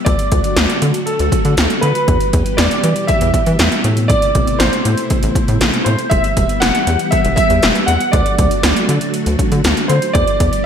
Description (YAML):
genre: synth-pop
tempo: 119 BPM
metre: 4/4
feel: straight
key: E minor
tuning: A4 = 439 Hz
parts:
  - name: clear concert grand piano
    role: melody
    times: 0.0-10.7 s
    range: A4 to F#5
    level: -18 LUFS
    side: right 1 dB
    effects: ensemble chorus, digital delay
  - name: string machine, full ensemble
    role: sustained chords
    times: 0.0-10.7 s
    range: B2 to G4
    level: -21 LUFS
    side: equal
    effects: ensemble chorus
  - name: rubbery square bass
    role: bass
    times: 0.1-10.5 s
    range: E1 to E3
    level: -16 LUFS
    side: equal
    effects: none
  - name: 80s electronic pad drums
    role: drums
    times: 0.1-10.6 s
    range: hi-hat, kick drum, snare drum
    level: -16 LUFS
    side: equal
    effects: gated reverb
room: moderate lush hall reverb, RT60 1.6 s, digital ambience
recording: bright 1980s-style digital production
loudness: -12 LUFS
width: side -8 dB against mid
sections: 0.0-10.7 A section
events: none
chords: 0.1 D; 2.1 Em; 3.8 Amadd9; 6.1 Em; 8.1 D; 10.1 Em